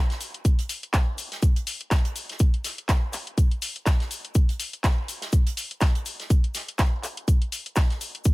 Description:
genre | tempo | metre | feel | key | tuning
house | 123 BPM | 4/4 | swing 57% on 16ths | none | none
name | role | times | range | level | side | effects
house drum kit | drums | 0.1-8.3 s | handclaps, hi-hat | -30 LUFS | left 1 dB | none
unplugged drum kit | drums | 0.1-8.3 s | hi-hat, shaker, snare drum | -37 LUFS | equal | sidechain pumping on hats, high-pass filter on hats, high-pass filter on snare, sidechain pumping on perc, high-pass filter on perc, high-pass filter on room
electronic kick drum | drums | 0.4-8.3 s | none | -20 LUFS | equal | none
room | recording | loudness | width
little or no reverb | none | -22 LUFS | side -22 dB against mid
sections
0.0-8.3 A section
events
none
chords
none

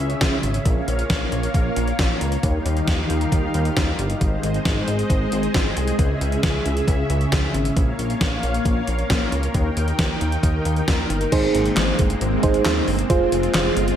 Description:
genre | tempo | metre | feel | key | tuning
synth-pop | 135 BPM | 4/4 | straight | Ab major | A4 = 440 Hz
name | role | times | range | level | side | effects
string machine, cellos | sustained chords | 0.0-14.0 s | Db3 to G5 | -24 LUFS | equal | ensemble chorus
chorused synth bass | bass | 0.0-13.9 s | F1 to Eb2 | -24 LUFS | equal | none
gated 80s digital drum machine | drums | 0.1-14.0 s | crash cymbal, handclaps, hi-hat, kick drum, snare drum | -22 LUFS | equal | gated reverb, gated reverb snare, overdrive
mellow FM electric piano | accompaniment | 11.3-13.8 s | Eb4 to C5 | -21 LUFS | right 4 dB | chorus
room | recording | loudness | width
moderate lush hall reverb, RT60 1.6 s, digital ambience | dreamy mix soaked in reverb | -18 LUFS | side -10 dB against mid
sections
0.0-11.3 A section; 11.3-14.0 B section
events
none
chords
0.0 Dbm; 0.7 Bbm; 2.4 Ebadd9; 4.2 Ab; 6.0 Dbm; 7.8 Bbm; 9.5 Eb; 11.3 Abadd9; 13.1 Fm

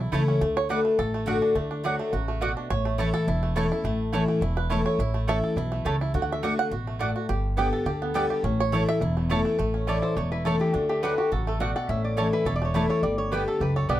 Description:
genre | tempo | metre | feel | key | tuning
bluegrass | 209 BPM | 4/4 | straight | A mixolydian | A4 = 440 Hz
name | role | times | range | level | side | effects
bluegrass banjo | melody | 0.0-14.0 s | E3 to F#5 | -31 LUFS | right 4 dB | none
picked steel-string acoustic guitar | accompaniment | 0.0-14.0 s | E2 to G4 | -26 LUFS | left 2 dB | none
upright bass | bass | 0.0-14.0 s | E1 to D2 | -28 LUFS | equal | none
mandolin | stabs | 0.1-14.0 s | A3 to A5 | -28 LUFS | right 3 dB | none
lap resonator guitar | melody | 9.9-14.0 s | F#4 to F#5 | -31 LUFS | equal | none
room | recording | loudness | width
moderate booth ambience, RT60 0.3 s | none | -23 LUFS | side -13 dB against mid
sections
0.4-9.6 A section; 9.6-14.0 B section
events
five-string banjo solo 0.0-9.6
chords
0.4 D; 2.7 A; 6.1 D; 7.3 G; 8.4 A; 10.7 D; 11.9 A; 13.0 G

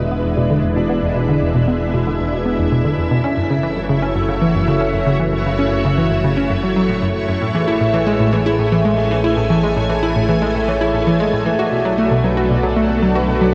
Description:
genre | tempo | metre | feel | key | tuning
ambient, sequencer-driven space music | 115 BPM | 4/4 | straight | F# minor | A4 = 444 Hz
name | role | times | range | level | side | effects
string machine, full ensemble | sustained chords | 0.0-13.5 s | G#3 to G#5 | -22 LUFS | equal | ensemble chorus, shimmer reverb
Celtic harp | arpeggios | 0.0-1.6, 7.4-13.5 s | D#4 to F#5 | -24 LUFS | equal | tape echo, shimmer reverb
analog pluck | riff | 0.0-13.5 s | E2 to F#4 | -20 LUFS | equal | chorus, tape echo, shimmer reverb
fat analog bass | bass | 0.0-13.5 s | E1 to B1 | -26 LUFS | equal | none
room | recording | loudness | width
wet lush hall reverb, RT60 2.7 s | worn, warbling old tape, cassette tape, warbly pitch drift | -17 LUFS | mono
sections
0.0-13.5 A section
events
none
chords
0.0 E7; 3.2 F#m7; 7.4 Amaj7; 11.6 Bm7

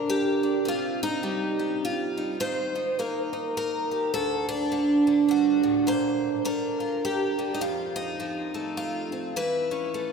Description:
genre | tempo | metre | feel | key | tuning
folk, solo fingerstyle acoustic guitar | 104 BPM | 3/4 | swing 60% on 8ths | unclear | A4 = 437 Hz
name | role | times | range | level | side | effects
picked twelve-string acoustic guitar | solo | 0.0-10.1 s | D2 to C5 | -24 LUFS | right 1 dB | none
room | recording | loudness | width
wet cathedral reverb, RT60 4.5 s | recorded in a church or concert hall | -24 LUFS | side -5 dB against mid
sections
0.0-10.1 A section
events
none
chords
0.0 Bb; 0.7 Cm; 2.4 Eb5; 4.1 D; 5.9 Bbadd9; 7.6 F; 9.4 A/E

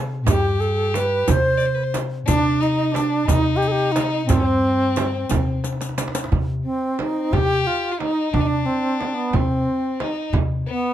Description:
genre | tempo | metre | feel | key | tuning
Persian modal ensemble | 60 BPM (dotted quarters) | 6/8 | straight | C avaz esfahan | A4 = 440 Hz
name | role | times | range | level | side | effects
upright bass | bass | 0.0-10.7 s | G2 to C3 | -23 LUFS | left 1 dB | none
bright reedy wooden-headed alto flute | melody | 0.3-10.9 s | B3 to C5 | -21 LUFS | right 2 dB | none
rich violin | second line | 0.3-10.9 s | B3 to D5 | -27 LUFS | left 6 dB | none
frame drum | percussion | 0.3-10.5 s | none | -27 LUFS | right 6 dB | none
riq | percussion | 0.3-6.3 s | none | -32 LUFS | left 6 dB | none
tombak | percussion | 0.3-10.5 s | none | -25 LUFS | right 2 dB | none
room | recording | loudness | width
light reverb | close, detailed microphones | -18 LUFS | side -11 dB against mid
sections
0.0-6.3 A section; 6.3-10.9 B section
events
drum fill 5.6-6.3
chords
none

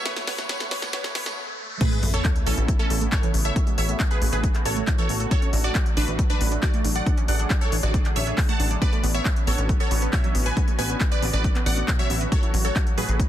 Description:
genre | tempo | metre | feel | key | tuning
uplifting trance | 137 BPM | 4/4 | straight | A major | A4 = 444 Hz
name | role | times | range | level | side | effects
wide unison pluck | melody | 0.0-13.2 s | C#4 to A5 | -29 LUFS | right 1 dB | phaser, sidechain pumping, ping-pong delay
filtered supersaw swell | sustained chords | 0.0-13.3 s | C#3 to C#5 | -34 LUFS | equal | sidechain pumping
riser and sub drop | sound effects | 0.0-3.6 s | none | -32 LUFS | equal | none
wide unison pluck | arpeggios | 0.1-13.0 s | A2 to D5 | -33 LUFS | right 4 dB | sidechain pumping, ping-pong delay
techno drum kit | drums | 0.1-13.3 s | crash cymbal, handclaps, hi-hat, snare drum | -30 LUFS | left 1 dB | none
tambourine | percussion | 0.1-1.4 s | none | -40 LUFS | right 4 dB | none
electronic kick drum | drums | 1.8-13.3 s | none | -23 LUFS | equal | none
plucky analog bass | bass | 2.0-13.3 s | A1 | -24 LUFS | equal | sidechain pumping
room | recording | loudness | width
little or no reverb | dense, heavily limited modern master, high-pass filter | -20 LUFS | side -12 dB against mid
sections
0.0-1.8 A section; 1.8-13.3 B section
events
build-up 0.0-1.8; drum fill 0.0-1.4; riser 0.0-1.8; filter sweep on synth pluck 0.0-1.8; stop 1.4-1.8; drop 1.8-13.3; impact 1.8-3.6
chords
0.0 F#m; 1.8 Aadd9; 5.3 D/A; 8.8 Bmadd9/A; 12.3 F#m/A

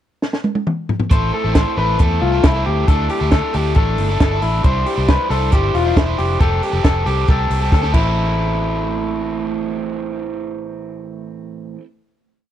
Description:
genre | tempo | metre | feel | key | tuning
jangly indie pop | 136 BPM | 4/4 | straight | A minor | A4 = 440 Hz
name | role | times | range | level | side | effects
compact cocktail drum kit | drums | 0.2-8.0 s | crash cymbal, hi-hat, kick drum, snare drum, toms | -15 LUFS | equal | none
overdriven electric guitar | accompaniment | 1.1-11.9 s | A2 to C5 | -23 LUFS | right 6 dB | none
electric guitar through a small old amp | arpeggios | 1.1-9.4 s | E4 to C5 | -21 LUFS | left 6 dB | slapback echo
vintage muted fingered electric bass | bass | 1.1-11.7 s | E1 to E2 | -20 LUFS | equal | none
room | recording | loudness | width
studio reverb | dry, close 1970s-style studio recording | -15 LUFS | side -11 dB against mid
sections
0.0-1.1 pickup bar; 1.1-8.2 verse; 8.2-11.7 final hit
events
drum fill 0.2-1.1, 7.7-8.2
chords
0.0 N.C.; 1.1 Am; 2.9 Dsus2; 4.6 Cadd9; 6.4 Fadd9; 7.9 Am

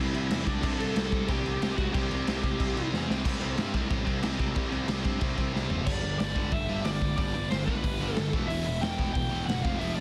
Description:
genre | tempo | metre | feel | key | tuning
punk rock | 183 BPM | 4/4 | straight | unclear | A4 = 440 Hz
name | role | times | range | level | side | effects
lead guitar through a small cranked amp | melody | 0.0-2.9, 5.9-10.0 s | D4 to G5 | -37 LUFS | equal | overdrive
heavy high-gain guitar | riff | 0.0-10.0 s | E2 to C4 | -40 LUFS | equal | distortion
overdriven semi-hollow guitar | riff | 0.0-10.0 s | E2 to C4 | -40 LUFS | equal | none
sludgy distorted guitar | riff | 0.0-10.0 s | E2 to C4 | -37 LUFS | equal | overdrive
fuzz picked electric bass | bass | 0.0-10.0 s | E1 to G2 | -37 LUFS | equal | overdrive
raw garage drum kit | drums | 0.1-9.9 s | crash cymbal, hi-hat, kick drum, snare drum, toms | -32 LUFS | equal | none
room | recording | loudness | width
little or no reverb | dense, heavily limited modern master | -29 LUFS | mono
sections
0.0-3.2 A section; 3.2-5.9 B section; 5.9-10.0 C section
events
drum fill 2.9-3.2, 5.5-5.9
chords
0.0 C5; 5.9 G; 8.3 Em

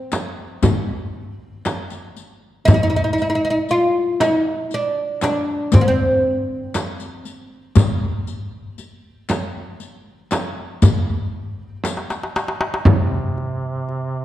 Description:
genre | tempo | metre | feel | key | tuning
Arabic maqam ensemble | 118 BPM (eighths) | 10/8 | straight | unclear | A4 = 438 Hz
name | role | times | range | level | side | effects
oud | melody | 0.0-11.8 s | Bb3+50c to F4 | -18 LUFS | equal | none
darbuka | percussion | 0.1-14.0 s | none | -19 LUFS | left 1 dB | none
frame drum | percussion | 0.1-13.1 s | none | -22 LUFS | right 2 dB | none
riq | percussion | 0.1-12.5 s | none | -28 LUFS | left 4 dB | none
warm duduk | drone | 12.9-14.2 s | C3 | -24 LUFS | right 2 dB | none
room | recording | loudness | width
wet scoring stage reverb, RT60 1.6 s | dark, warm production | -17 LUFS | side -14 dB against mid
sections
0.0-12.9 A section; 12.9-14.2 B section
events
drum fill 11.8-12.9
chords
none

